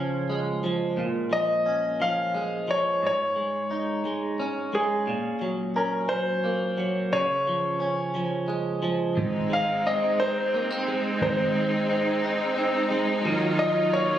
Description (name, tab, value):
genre	six-eight pop ballad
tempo	59 BPM (dotted quarters)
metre	6/8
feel	straight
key	unclear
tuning	A4 = 439 Hz
part	bright grand piano	melody	0.0-14.2 s	Ab4 to F5	-26 LUFS	left 1 dB	none
part	direct-recorded clean electric guitar	accompaniment	0.0-14.2 s	Ab2 to Eb4	-28 LUFS	right 1 dB	double-tracked left and right
part	rich studio string section	sustained chords	9.2-14.2 s	Gb3 to F4	-26 LUFS	right 1 dB	none
part	vintage muted fingered electric bass	bass	9.2-14.2 s	Ab1 to Eb2	-32 LUFS	right 1 dB	none
room	light reverb, studio reverb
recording	recorded on a phone in the room, club reverb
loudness	-23 LUFS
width	side -11 dB against mid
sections	0.0-9.2 A section; 9.2-14.2 B section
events	none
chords	0.0 Db; 1.0 Bbm7; 3.0 Absus4; 5.1 Gb/Bb; 7.1 Db; 9.2 Ab; 13.2 Ebmadd9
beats	| 0.98 2.00 | 3.02 4.05 | 5.07 6.09 | 7.12 8.14 | 9.16 10.19 | 11.21 12.23 | 13.25